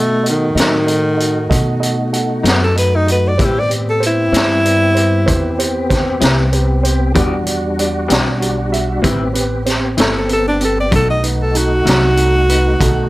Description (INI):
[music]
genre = slow blues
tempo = 64 BPM (dotted quarters)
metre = 12/8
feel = straight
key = unclear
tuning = A4 = 441 Hz
[part]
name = mellow tenor saxophone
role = melody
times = 0.0-13.1 s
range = D#3 to D#5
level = -16 LUFS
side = equal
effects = none
[part]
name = dark upright piano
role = accompaniment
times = 0.0-13.0 s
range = C4 to F#5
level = -22 LUFS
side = right 4 dB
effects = none
[part]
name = tonewheel organ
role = sustained chords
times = 0.0-13.1 s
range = G3 to G4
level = -22 LUFS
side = left 2 dB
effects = slow rotary speaker, chorus vibrato
[part]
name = upright bass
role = bass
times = 0.0-13.1 s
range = G1 to B2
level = -18 LUFS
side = equal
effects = none
[part]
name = raw garage drum kit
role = drums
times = 0.3-12.9 s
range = hi-hat, kick drum, snare drum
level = -18 LUFS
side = equal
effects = none
[part]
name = electric guitar through a small old amp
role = accompaniment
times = 0.6-12.0 s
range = A2 to G4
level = -20 LUFS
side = left 4 dB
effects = harmonic tremolo
[sound]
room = light reverb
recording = none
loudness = -12 LUFS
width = side -18 dB against mid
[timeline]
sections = 0.0-13.1 A section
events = tenor saxophone solo 0.0-13.1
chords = 0.0 B7; 3.4 Am7; 7.2 Em7; 9.0 Am7; 10.9 B7